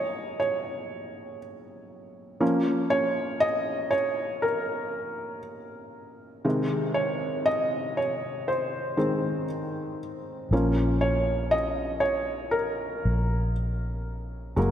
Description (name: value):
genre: pop ballad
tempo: 59 BPM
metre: 4/4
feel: straight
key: Bb minor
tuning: A4 = 440 Hz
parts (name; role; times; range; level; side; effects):
- felt-muted upright piano; accompaniment; 0.0-14.7 s; C3 to Eb5; -26 LUFS; equal; none
- vintage muted fingered electric bass; bass; 10.5-14.7 s; Gb1 to Bb1; -27 LUFS; equal; none
room: wet lush hall reverb, RT60 2.8 s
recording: dreamy mix soaked in reverb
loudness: -25 LUFS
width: side -10 dB against mid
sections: 0.0-14.7 A section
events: felt piano solo 0.0-14.7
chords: 0.0 Gbadd9; 2.4 Bbm; 6.4 Ab; 10.5 Bbm